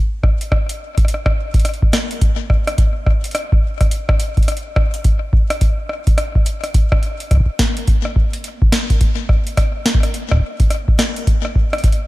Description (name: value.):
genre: IDM.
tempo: 106 BPM.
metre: 4/4.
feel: swing 62% on 16ths.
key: none.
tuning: none.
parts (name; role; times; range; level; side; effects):
electro analog drum machine; drums; 0.2-12.0 s; hi-hat, rim click, snare drum; -22 LUFS; left 1 dB; ping-pong delay.
electronic kick drum; drums; 0.2-12.0 s; none; -14 LUFS; equal; none.
room: digital ambience.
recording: none.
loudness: -14 LUFS.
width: side -19 dB against mid.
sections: 0.0-12.1 A section.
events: none.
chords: none.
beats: 0.52 1.08 1.65 | 2.22 2.78 3.35 3.91 | 4.48 5.05 5.61 6.18 | 6.74 7.31 7.88 8.44 | 9.01 9.57 10.14 10.71 | 11.27 11.84.